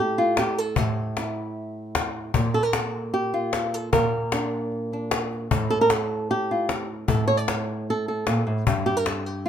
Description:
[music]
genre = flamenco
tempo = 152 BPM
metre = 4/4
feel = straight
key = unclear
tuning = A4 = 436 Hz
[part]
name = flamenco guitar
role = melody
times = 0.0-9.5 s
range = G2 to D5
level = -23 LUFS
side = right 1 dB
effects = none
[part]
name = cajon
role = percussion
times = 0.4-9.3 s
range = none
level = -26 LUFS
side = left 4 dB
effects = none
[sound]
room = light reverb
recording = minimal, uncompressed stereo recording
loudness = -22 LUFS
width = side -9 dB against mid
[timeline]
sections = 0.0-9.5 A section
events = none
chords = 0.0 A5; 2.3 Bb; 5.5 N.C.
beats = 0.38 | 0.77 1.17 1.56 1.95 | 2.35 2.74 3.14 3.53 | 3.93 4.32 4.71 5.11 | 5.50 5.90 6.29 6.69 | 7.08 7.48 7.87 8.27 | 8.66 9.06 9.45

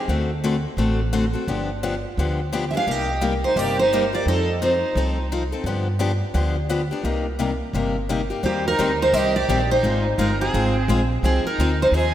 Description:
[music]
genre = acoustic string swing (jazz manouche)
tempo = 172 BPM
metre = 4/4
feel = swing 61% on 8ths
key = C minor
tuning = A4 = 441 Hz
[part]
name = picked steel-string acoustic guitar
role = accompaniment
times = 0.0-12.1 s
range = C3 to C5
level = -24 LUFS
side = left 3 dB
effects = none
[part]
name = upright bass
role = bass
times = 0.1-12.1 s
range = G1 to G2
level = -24 LUFS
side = equal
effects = none
[part]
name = picked steel-string acoustic guitar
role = melody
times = 2.7-5.3, 8.5-12.1 s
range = G4 to F5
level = -22 LUFS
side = right 2 dB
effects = wide subtle chorus, analog delay
[part]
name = rich violin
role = second line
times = 2.7-5.3, 8.4-12.1 s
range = Bb3 to A4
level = -27 LUFS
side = right 3 dB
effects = none
[sound]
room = wet lush hall reverb, RT60 2.8 s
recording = dreamy mix soaked in reverb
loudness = -19 LUFS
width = side -11 dB against mid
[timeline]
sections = 0.0-8.4 A section; 8.4-12.1 B section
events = none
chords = 0.1 D7; 1.5 G7; 2.9 Cm7; 4.3 F7; 5.7 G7; 7.0 Cm7; 8.4 Eb6; 9.8 Ab6; 11.2 Fm7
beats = | 0.09 0.44 0.79 1.14 | 1.48 1.83 2.18 2.53 | 2.87 3.22 3.57 3.92 | 4.26 4.61 4.96 5.30 | 5.65 6.00 6.35 6.70 | 7.04 7.39 7.74 8.09 | 8.44 8.79 9.14 9.49 | 9.84 10.19 10.54 10.89 | 11.24 11.59 11.94

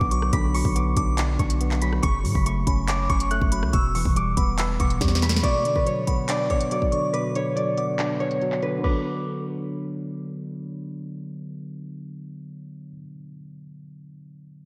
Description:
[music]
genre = hip hop, trap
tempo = 141 BPM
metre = 4/4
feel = half-time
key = B minor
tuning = A4 = 440 Hz
[part]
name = concert harp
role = melody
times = 0.0-10.9 s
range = B4 to F#6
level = -30 LUFS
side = equal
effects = low-pass filter, delay
[part]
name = delicate synth tine bell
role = second line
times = 0.0-10.1 s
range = B5 to E6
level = -36 LUFS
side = equal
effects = chorus, delay
[part]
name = tine electric piano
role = accompaniment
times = 0.0-14.7 s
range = B2 to D5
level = -31 LUFS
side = equal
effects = low-pass filter
[part]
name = long sustained 808-style bass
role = bass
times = 0.0-5.4 s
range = E1 to A2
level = -27 LUFS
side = equal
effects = none
[part]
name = trap drum kit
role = drums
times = 0.0-8.9 s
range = crash cymbal, handclaps, hi-hat, kick drum, rim click, snare drum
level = -28 LUFS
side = equal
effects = none
[sound]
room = moderate lush hall reverb, RT60 1.9 s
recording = dreamy mix soaked in reverb, low-pass filter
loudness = -24 LUFS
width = mono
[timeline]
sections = 0.0-5.4 A section; 5.4-8.8 B section; 8.8-12.2 C section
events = drum fill 5.0-5.4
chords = 0.0 Bm; 2.0 F#m; 3.7 Em; 5.4 Bm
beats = | 0.33 0.76 1.18 1.61 | 2.03 2.46 2.88 3.31 | 3.73 4.16 4.58 5.01 | 5.44 5.86 6.29 6.71 | 7.14 7.56 7.99 8.41 | 8.84 9.27 9.69 10.12 | 10.54 10.97 11.39 11.82

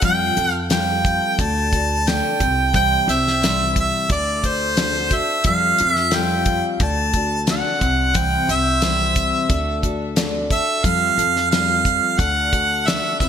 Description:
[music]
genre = folk rock and heartland rock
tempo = 89 BPM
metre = 4/4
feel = straight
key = unclear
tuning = A4 = 439 Hz
[part]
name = warm harmonica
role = melody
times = 0.0-13.3 s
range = C5 to A5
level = -19 LUFS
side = right 2 dB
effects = ping-pong delay
[part]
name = picked twelve-string acoustic guitar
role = accompaniment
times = 0.0-13.3 s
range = C3 to C5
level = -24 LUFS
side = left 4 dB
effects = wide subtle chorus
[part]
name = upright bass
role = bass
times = 0.0-13.3 s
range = C2 to F2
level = -25 LUFS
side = equal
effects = none
[part]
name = damped 70s drum kit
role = drums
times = 0.0-13.3 s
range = hi-hat, kick drum, snare drum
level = -22 LUFS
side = equal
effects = gated reverb
[sound]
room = light reverb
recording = bright 1980s-style digital production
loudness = -16 LUFS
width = side -8 dB against mid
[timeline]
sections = 0.0-13.3 A section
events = none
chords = 0.0 Fadd9; 1.4 D; 2.4 C; 4.1 D; 5.5 Fadd9; 6.8 D; 7.8 C; 9.5 D; 10.8 Fadd9; 12.2 D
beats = | 0.03 0.71 1.39 2.07 | 2.75 3.42 4.10 4.78 | 5.45 6.13 6.80 7.48 | 8.15 8.83 9.50 10.17 | 10.85 11.52 12.19 12.87

